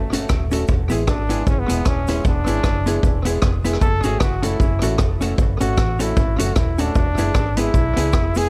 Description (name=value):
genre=ska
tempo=153 BPM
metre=4/4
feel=swing 58% on 8ths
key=unclear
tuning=A4 = 440 Hz
part: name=brilliant trombone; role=melody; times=0.0-8.5 s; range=A3 to A4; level=-28 LUFS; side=equal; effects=tape echo
part: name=vintage muted fingered electric bass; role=bass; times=0.0-8.5 s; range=D#1 to C#2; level=-25 LUFS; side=equal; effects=none
part: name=hollow-body jazz guitar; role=accompaniment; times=0.1-8.5 s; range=B3 to A4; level=-29 LUFS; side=equal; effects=tape echo
part: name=warm upright piano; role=stabs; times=0.1-8.5 s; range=G#3 to A4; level=-30 LUFS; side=equal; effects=tape echo
part: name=vintage drum kit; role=drums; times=0.1-8.4 s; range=hi-hat, kick drum, rim click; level=-22 LUFS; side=equal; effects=none
part: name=cabasa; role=percussion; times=0.1-8.4 s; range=none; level=-44 LUFS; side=equal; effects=none
room=little or no reverb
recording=none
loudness=-19 LUFS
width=mono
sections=0.0-8.5 A section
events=trombone solo 0.0-8.5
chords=0.0 F#m; 0.7 E; 3.8 F#m; 7.0 E